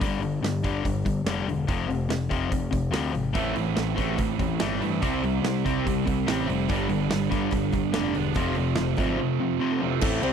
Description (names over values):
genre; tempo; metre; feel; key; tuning
classic rock; 144 BPM; 4/4; straight; unclear; A4 = 440 Hz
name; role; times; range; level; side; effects
cranked stack guitar; riff; 0.0-10.3 s; F2 to C4; -27 LUFS; left 7 dB; overdrive, spring reverb
growling picked electric bass; bass; 0.0-10.3 s; E1 to G2; -30 LUFS; right 1 dB; overdrive
big rock drum kit; drums; 0.0-10.3 s; crash cymbal, hi-hat, kick drum, ride cymbal, snare drum; -30 LUFS; right 1 dB; none
distorted electric guitar; riff; 3.3-10.3 s; F2 to E4; -28 LUFS; right 20 dB; distortion
tonewheel organ; sustained chords; 9.7-10.3 s; A3 to D5; -34 LUFS; right 3 dB; overdrive, slow rotary speaker
overdriven reed electric piano; accompaniment; 10.0-10.3 s; C4 to C5; -28 LUFS; left 4 dB; none
room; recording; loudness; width
little or no reverb; dry, close 1970s-style studio recording; -23 LUFS; side -7 dB against mid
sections
0.0-10.0 A section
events
none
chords
0.0 G5; 1.7 F5; 3.4 Am; 5.0 C; 6.7 G; 8.4 F; 10.0 Am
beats
| 0.02 0.44 0.85 1.27 | 1.69 2.10 2.52 2.94 | 3.36 3.77 4.19 4.61 | 5.03 5.45 5.86 6.28 | 6.70 7.12 7.53 7.95 | 8.37 8.78 9.20 9.61 | 10.03